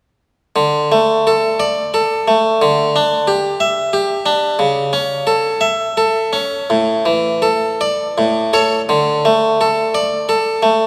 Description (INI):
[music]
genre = classical, baroque-style suite movement for harpsichord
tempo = 80-92 BPM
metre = 3/4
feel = rubato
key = unclear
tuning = A4 = 445 Hz
[part]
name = harpsichord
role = solo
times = 0.6-10.9 s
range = A2 to E5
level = -16 LUFS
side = equal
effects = none
[sound]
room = wet church reverb, RT60 3.2 s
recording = none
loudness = -16 LUFS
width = mono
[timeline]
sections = 0.6-10.9 A section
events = none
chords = 0.6 D5; 2.6 Em7/D; 4.6 A/C#; 6.7 Asus4; 8.2 A; 8.9 D5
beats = | 0.56 1.26 1.94 | 2.62 3.27 3.93 | 4.59 5.26 5.97 | 6.69 7.42 8.16 | 8.89 9.60 10.29